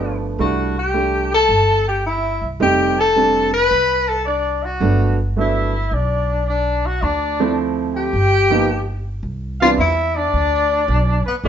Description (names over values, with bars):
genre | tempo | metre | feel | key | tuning
jazz, small-group swing and bop | 109 BPM | 4/4 | swing 68% on 8ths | G major | A4 = 438 Hz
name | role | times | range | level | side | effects
breathy tenor saxophone | melody | 0.0-11.5 s | B3 to B4 | -18 LUFS | left 3 dB | none
growling trumpet | second line | 0.0-11.5 s | B4 to B5 | -26 LUFS | right 4 dB | none
warm concert grand piano | accompaniment | 0.0-11.5 s | E3 to G4 | -20 LUFS | right 5 dB | none
upright bass | bass | 0.0-11.5 s | F1 to E2 | -22 LUFS | equal | none
room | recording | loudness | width
moderate stone room reverb, RT60 0.9 s | band playing live in one room, nothing above 7.7 kHz | -15 LUFS | side -9 dB against mid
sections
0.0-9.2 A section; 9.2-11.5 B section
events
none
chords
0.4 C6; 2.6 F9; 4.8 Gmaj9; 7.0 Dm7; 8.1 G7alt; 9.2 Cmaj9